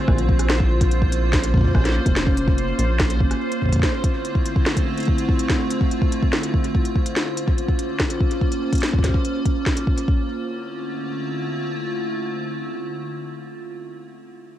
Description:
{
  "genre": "IDM",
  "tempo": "144 BPM",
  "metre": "4/4",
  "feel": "straight",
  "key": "unclear",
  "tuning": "A4 = 440 Hz",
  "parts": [
    { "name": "icy glass pad", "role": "sustained chords", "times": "0.0-13.6 s", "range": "D3 to F4", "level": "-25 LUFS", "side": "equal", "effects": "chorus, built-in reverb, cassette tape" },
    { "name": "bubbling stepped-filter texture", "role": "texture", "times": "0.0-10.1 s", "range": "C5", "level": "-32 LUFS", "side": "right 3 dB", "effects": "chorus, built-in reverb, sidechain pumping, cassette tape" },
    { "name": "rubbery square bass", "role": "bass", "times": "0.1-3.3 s", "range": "F1 to Bb1", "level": "-21 LUFS", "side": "equal", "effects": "none" },
    { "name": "electronic kick drum", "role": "drums", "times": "0.1-10.2 s", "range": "none", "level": "-20 LUFS", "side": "equal", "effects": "none" },
    { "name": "organic electronic drum kit", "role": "drums", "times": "0.1-10.1 s", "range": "hi-hat, rim click, snare drum", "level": "-25 LUFS", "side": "equal", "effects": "tape echo" }
  ],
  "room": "light reverb",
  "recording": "home recording on cassette",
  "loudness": "-19 LUFS",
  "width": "side -12 dB against mid",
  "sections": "0.0-10.1 A section; 10.1-13.4 B section",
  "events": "none",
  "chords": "0.1 Bbm; 3.4 Dm7; 6.7 Bbm; 10.1 Dm7"
}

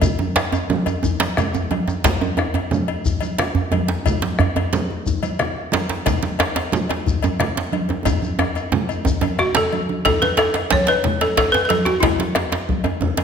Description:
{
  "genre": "west african traditional, West African drum ensemble",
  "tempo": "120 BPM (dotted quarters)",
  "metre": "12/8",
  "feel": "straight",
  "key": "A major pentatonic",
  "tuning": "A4 = 440 Hz",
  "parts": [
    { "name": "bombo", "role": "percussion", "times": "0.0-12.9 s", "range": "none", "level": "-26 LUFS", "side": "left 3 dB", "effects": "none" },
    { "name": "congas", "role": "percussion", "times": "0.0-13.2 s", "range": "none", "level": "-25 LUFS", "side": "right 3 dB", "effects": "none" },
    { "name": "cowbell", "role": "percussion", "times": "0.0-13.2 s", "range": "none", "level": "-28 LUFS", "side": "left 7 dB", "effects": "none" },
    { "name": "djembe", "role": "percussion", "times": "0.0-13.2 s", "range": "none", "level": "-27 LUFS", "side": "left 7 dB", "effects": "none" },
    { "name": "djembe", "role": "percussion", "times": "0.0-13.2 s", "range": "none", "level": "-22 LUFS", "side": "right 4 dB", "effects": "none" },
    { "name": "shekere", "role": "percussion", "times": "0.0-9.7 s", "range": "none", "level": "-32 LUFS", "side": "left 3 dB", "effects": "none" },
    { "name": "balafon", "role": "melody", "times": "9.4-13.0 s", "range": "E4 to C#5", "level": "-18 LUFS", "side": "equal", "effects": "none" }
  ],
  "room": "wet recital hall reverb, RT60 1.5 s",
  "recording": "none",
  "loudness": "-17 LUFS",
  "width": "side -7 dB against mid",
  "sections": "0.0-10.0 A section; 10.0-13.2 B section",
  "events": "speeding up 0.0-13.2; drum fill 1.4-2.0, 8.1-10.0",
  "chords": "none"
}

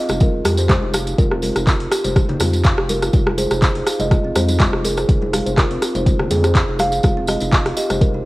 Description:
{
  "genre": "afro house",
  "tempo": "123 BPM",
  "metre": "4/4",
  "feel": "swing 54% on 16ths",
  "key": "unclear",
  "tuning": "A4 = 440 Hz",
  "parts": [
    { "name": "kalimba", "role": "melody", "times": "0.0-8.3 s", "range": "Bb4 to F5", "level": "-26 LUFS", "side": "equal", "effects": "cassette tape, tape echo" },
    { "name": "kalimba", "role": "arpeggios", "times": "0.1-8.2 s", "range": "C4 to F5", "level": "-23 LUFS", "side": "right 1 dB", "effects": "sidechain pumping, cassette tape, tape echo" },
    { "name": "round analog bass", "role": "bass", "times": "0.1-8.2 s", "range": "F1 to F2", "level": "-23 LUFS", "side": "equal", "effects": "sidechain pumping" },
    { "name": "afro-pop drum kit", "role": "drums", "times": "0.1-8.1 s", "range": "handclaps, hi-hat, rim click", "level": "-22 LUFS", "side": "equal", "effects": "cassette tape" },
    { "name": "congas", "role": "percussion", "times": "0.1-8.1 s", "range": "none", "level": "-27 LUFS", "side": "left 1 dB", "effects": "none" },
    { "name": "tambourine", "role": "percussion", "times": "0.1-8.1 s", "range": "none", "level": "-28 LUFS", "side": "right 2 dB", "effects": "none" },
    { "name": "electronic kick drum", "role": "drums", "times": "0.2-8.1 s", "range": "none", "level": "-16 LUFS", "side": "equal", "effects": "overdrive, cassette tape" }
  ],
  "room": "studio ambience",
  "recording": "home recording on cassette",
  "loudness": "-15 LUFS",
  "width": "side -20 dB against mid",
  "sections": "0.0-8.3 A section",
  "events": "none",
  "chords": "0.0 Ebsus2/F (rootless); 3.1 F5; 7.0 Ebsus2/F"
}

